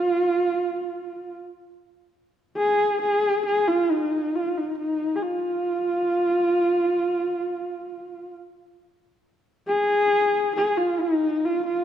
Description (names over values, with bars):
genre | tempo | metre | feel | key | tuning
mongolian traditional, Mongolian folk | 68 BPM | 4/4 | straight | F yu mode | A4 = 440 Hz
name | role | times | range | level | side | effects
dark horsehead fiddle | solo | 0.0-11.8 s | Eb4 to Ab4 | -21 LUFS | equal | none
room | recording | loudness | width
moderate recital hall reverb, RT60 1.8 s | dark, warm production | -21 LUFS | side -10 dB against mid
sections
0.0-1.7 A section; 1.7-11.8 B section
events
none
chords
none